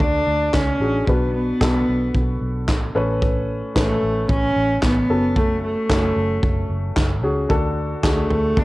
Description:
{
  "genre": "piano-driven pop",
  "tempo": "112 BPM",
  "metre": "4/4",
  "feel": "straight",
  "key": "A major",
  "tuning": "A4 = 443 Hz",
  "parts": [
    { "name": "rich cello", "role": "melody", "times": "0.0-8.6 s", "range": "A3 to D4", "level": "-21 LUFS", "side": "equal", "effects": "cassette tape, analog delay" },
    { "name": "warm grand piano", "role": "accompaniment", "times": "0.0-8.6 s", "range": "A2 to B4", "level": "-25 LUFS", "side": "left 1 dB", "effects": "cassette tape" },
    { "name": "vintage muted fingered electric bass", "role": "bass", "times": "0.0-8.6 s", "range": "F#1 to D2", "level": "-24 LUFS", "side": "equal", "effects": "none" },
    { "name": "natural country drum kit", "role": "drums", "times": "0.0-8.6 s", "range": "handclaps, kick drum, snare drum, toms", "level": "-21 LUFS", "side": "equal", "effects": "cassette tape" }
  ],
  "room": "light reverb, studio reverb",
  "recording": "home recording on cassette",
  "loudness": "-17 LUFS",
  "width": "side -19 dB against mid",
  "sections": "0.0-8.6 A section",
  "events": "none",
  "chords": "0.0 D; 1.1 Bm; 3.0 Aadd9; 5.1 F#m; 7.5 D",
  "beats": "0.00 0.54 | 1.08 1.61 2.15 2.68 | 3.22 3.75 4.29 4.83 | 5.36 5.90 6.43 6.97 | 7.50 8.04 8.57"
}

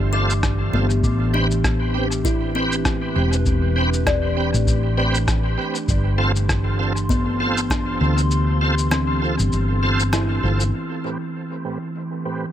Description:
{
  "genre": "ambient dub",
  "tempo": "99 BPM",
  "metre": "4/4",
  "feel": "swing 56% on 16ths",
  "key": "A minor",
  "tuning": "A4 = 440 Hz",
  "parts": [
    { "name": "warbly tape-like pad", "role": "sustained chords", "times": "0.0-12.5 s", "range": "E3 to C6", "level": "-26 LUFS", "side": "equal", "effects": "chorus, built-in reverb" },
    { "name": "hollow-body short-scale fingered electric bass", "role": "bass", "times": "0.0-10.7 s", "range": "E1 to D2", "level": "-21 LUFS", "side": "equal", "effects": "none" },
    { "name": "kalimba", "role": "arpeggios", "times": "0.1-12.1 s", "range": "B3 to D6", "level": "-27 LUFS", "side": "left 3 dB", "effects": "low-pass filter, dub echo" },
    { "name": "bright tonewheel organ", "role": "stabs", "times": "0.1-12.5 s", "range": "A2 to B4", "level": "-26 LUFS", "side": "right 3 dB", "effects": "chorus vibrato, slow rotary speaker, low-pass filter, dub echo" },
    { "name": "electronic cabasa and rim click", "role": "drums", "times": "0.3-10.7 s", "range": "none", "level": "-28 LUFS", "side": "left 1 dB", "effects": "overdrive, dub echo" },
    { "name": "electronic kick drum", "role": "drums", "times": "0.4-7.8 s", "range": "none", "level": "-24 LUFS", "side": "equal", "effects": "none" }
  ],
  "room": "light reverb",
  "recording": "none",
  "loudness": "-18 LUFS",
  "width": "side -11 dB against mid",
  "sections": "0.0-10.7 A section; 10.7-12.5 B section",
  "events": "kick drops out 8.3-10.7; band accent 10.1-10.4; filter sweep on kalimba 10.7-12.5",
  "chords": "0.0 G7sus4; 1.0 Am7; 5.9 G7sus4; 10.7 Am7",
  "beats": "0.43 | 1.04 1.64 2.25 2.85 | 3.46 4.07 4.67 5.28 | 5.88 6.49 7.10 7.70 | 8.31 8.91 9.52 10.13 | 10.73 11.34 11.95"
}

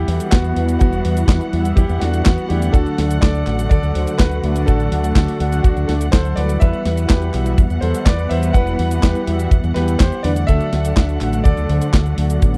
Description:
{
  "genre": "italo disco",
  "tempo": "124 BPM",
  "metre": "4/4",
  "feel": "straight",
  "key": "E minor",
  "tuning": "A4 = 441 Hz",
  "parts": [
    { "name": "clear concert grand piano", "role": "melody", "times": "0.0-12.6 s", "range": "B3 to F#5", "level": "-27 LUFS", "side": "equal", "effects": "tape echo" },
    { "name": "warm symphonic string section", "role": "sustained chords", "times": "0.0-12.6 s", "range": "D3 to F#5", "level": "-27 LUFS", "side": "equal", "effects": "vintage 12-bit sampler grit" },
    { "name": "fingered electric bass with an envelope filter", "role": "bass", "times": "0.0-12.6 s", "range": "E1 to E2", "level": "-22 LUFS", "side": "equal", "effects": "none" },
    { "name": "mellow synth brass", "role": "stabs", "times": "0.1-12.6 s", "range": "D3 to F#5", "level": "-27 LUFS", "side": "equal", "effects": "chorus" },
    { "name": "clean 12-bit digital drum machine", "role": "drums", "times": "0.1-12.6 s", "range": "cabasa, handclaps, hi-hat, snare drum", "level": "-24 LUFS", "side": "equal", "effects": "overdrive" },
    { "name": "kick drum", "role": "drums", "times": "0.3-12.5 s", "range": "none", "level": "-17 LUFS", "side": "equal", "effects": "none" }
  ],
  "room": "little or no reverb",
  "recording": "dry, close 1970s-style studio recording",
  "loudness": "-17 LUFS",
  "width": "mono",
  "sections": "0.0-12.6 A section",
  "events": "none",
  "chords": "0.0 Emadd9; 2.7 D; 6.6 Emadd9; 10.5 D",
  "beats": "0.32 | 0.81 1.29 1.77 2.26 | 2.74 3.23 3.71 4.19 | 4.68 5.16 5.64 6.13 | 6.61 7.10 7.58 8.06 | 8.55 9.03 9.52 10.00 | 10.48 10.97 11.45 11.94 | 12.42"
}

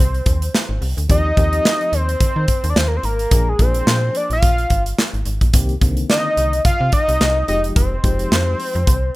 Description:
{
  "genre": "early-eighties boogie funk",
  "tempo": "108 BPM",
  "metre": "4/4",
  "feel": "swing 56% on 16ths",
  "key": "Eb major",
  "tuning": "A4 = 439 Hz",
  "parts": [
    { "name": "fat analog lead", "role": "melody", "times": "0.0-9.2 s", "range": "Ab4 to F5", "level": "-20 LUFS", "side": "equal", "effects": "chorus, slapback echo" },
    { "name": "slap-like FM bass", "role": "bass", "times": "0.0-9.1 s", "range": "F1 to Eb3", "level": "-20 LUFS", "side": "equal", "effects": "none" },
    { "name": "modern studio drum kit", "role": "drums", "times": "0.1-9.0 s", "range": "handclaps, hi-hat, kick drum, snare drum", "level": "-17 LUFS", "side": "equal", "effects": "none" },
    { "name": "FM electric piano with tremolo", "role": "accompaniment", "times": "1.1-8.8 s", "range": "D3 to Ab4", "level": "-27 LUFS", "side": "left 3 dB", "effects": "none" }
  ],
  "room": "studio ambience",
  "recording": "rough home demo mix",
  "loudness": "-15 LUFS",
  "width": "side -19 dB against mid",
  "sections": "0.0-9.2 A section",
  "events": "none",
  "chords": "0.0 F7(no3) (rootless); 1.1 Eb69; 3.3 Bb7; 5.5 Cm7; 7.5 Fm9",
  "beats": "0.54 | 1.09 1.65 2.20 2.76 | 3.31 3.87 4.43 4.98 | 5.54 6.09 6.65 7.20 | 7.76 8.31 8.87"
}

